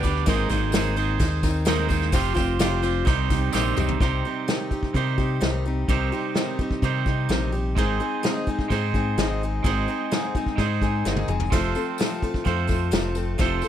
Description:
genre	folk rock and heartland rock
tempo	128 BPM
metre	4/4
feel	straight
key	C minor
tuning	A4 = 440 Hz
part	picked steel-string acoustic guitar	accompaniment	0.0-13.7 s	F2 to B4	-28 LUFS	left 5 dB	none
part	twangy electric guitar	riff	0.0-13.7 s	C3 to D5	-28 LUFS	right 14 dB	none
part	fingered electric bass	bass	0.0-13.6 s	F1 to C3	-25 LUFS	equal	none
part	soft brush drum kit	drums	0.0-13.7 s	crash cymbal, hi-hat, kick drum, snare drum, toms	-25 LUFS	equal	none
part	tambourine	percussion	0.0-3.9, 11.5-13.7 s	none	-42 LUFS	left 21 dB	none
room	little or no reverb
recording	none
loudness	-21 LUFS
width	side -10 dB against mid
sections	0.0-4.0 A section; 4.0-13.7 B section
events	drum fill 3.5-4.0, 11.1-11.5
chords	0.3 Abadd9; 2.1 Fsus2; 3.1 Cm; 7.8 Ab; 11.5 F

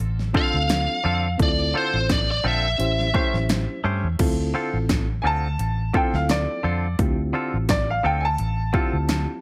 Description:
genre	straight-eighth soul blues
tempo	86 BPM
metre	4/4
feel	swing 55% on 16ths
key	D minor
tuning	A4 = 440 Hz
part	vintage muted fingered electric bass	bass	0.0-9.2 s	A1 to G2	-27 LUFS	equal	none
part	pop drum kit	drums	0.0-9.3 s	crash cymbal, hi-hat, kick drum, snare drum	-26 LUFS	equal	overdrive
part	reed electric piano	accompaniment	0.3-9.4 s	C4 to B#4	-31 LUFS	equal	overdrive, fast tremolo
part	direct-recorded clean electric guitar	stabs	0.3-9.0 s	D3 to B#4	-32 LUFS	equal	tape echo
part	biting lead guitar	melody	0.4-3.8 s	C5 to F5	-26 LUFS	equal	overdrive
part	clear upright piano	second line	5.2-9.4 s	D5 to A5	-28 LUFS	equal	plate reverb
room	light reverb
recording	none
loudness	-22 LUFS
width	mono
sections	0.0-4.2 A section; 4.2-9.4 B section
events	upright piano solo 4.2-9.4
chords	0.0 Dm7; 2.8 A7#9; 4.2 Dm7

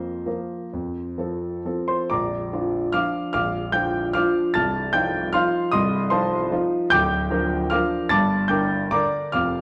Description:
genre	classical, piano waltz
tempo	120-158 BPM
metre	3/4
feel	rubato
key	Bb major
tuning	A4 = 441 Hz
part	warm grand piano	solo	0.0-9.6 s	Bb0 to A6	-23 LUFS	equal	none
room	moderate large studio reverb, RT60 1.2 s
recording	dark, warm production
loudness	-23 LUFS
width	mono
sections	0.0-2.1 A section; 2.1-9.6 B section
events	none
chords	0.0 Fsus4; 0.7 F; 2.1 Bb; 4.5 F7/C; 6.9 Bb/D; 8.1 Gm

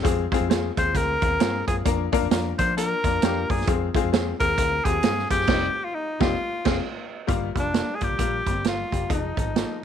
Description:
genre	uptempo 1960s-style soul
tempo	132 BPM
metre	4/4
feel	swing 61% on 8ths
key	F dorian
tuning	A4 = 440 Hz
part	clear upright piano	accompaniment	0.0-9.8 s	F3 to Bb4	-27 LUFS	left 13 dB	none
part	vintage muted fingered electric bass	bass	0.0-9.6 s	F1 to F3	-30 LUFS	equal	none
part	vintage drum kit	drums	0.0-9.7 s	crash cymbal, hi-hat, kick drum, snare drum	-25 LUFS	right 4 dB	none
part	breathy tenor saxophone	melody	0.8-9.8 s	D4 to C5	-26 LUFS	left 1 dB	none
room	light reverb, small room reverb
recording	1960s-style stereo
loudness	-21 LUFS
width	side -8 dB against mid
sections	0.0-7.3 A section; 7.3-9.8 B section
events	band accent 5.5-7.3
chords	0.0 Fm; 1.9 Bb/F; 3.7 Fm; 5.5 Cm/F; 6.4 Fm; 7.3 Gm7; 9.1 Fm7

